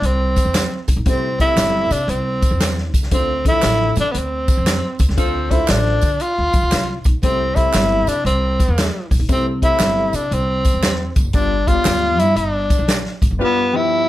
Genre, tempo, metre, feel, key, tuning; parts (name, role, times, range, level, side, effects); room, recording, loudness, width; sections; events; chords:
uptempo 1960s-style soul; 117 BPM; 4/4; swing 65% on 8ths; C major; A4 = 439 Hz
breathy tenor saxophone; melody; 0.0-14.1 s; B3 to F4; -19 LUFS; equal; slapback echo
upright bass; bass; 0.0-13.4 s; F#1 to D3; -21 LUFS; equal
vintage drum kit; drums; 0.0-13.3 s; hi-hat, kick drum, snare drum; -18 LUFS; equal
tambourine and handclaps; percussion; 0.4-13.3 s; -29 LUFS; right 5 dB
warm concert grand piano; accompaniment; 1.1-14.1 s; G2 to G5; -25 LUFS; left 4 dB
mellow horn section; second line; 5.2-5.6, 13.4-13.8 s; B3 to C5; -22 LUFS; left 1 dB
light reverb; -15 LUFS; side -15 dB against mid
0.0-14.1 A section
band accent 5.2-7.2, 13.4-14.1
0.0 C6; 3.1 Dm7; 7.2 C6; 11.3 G7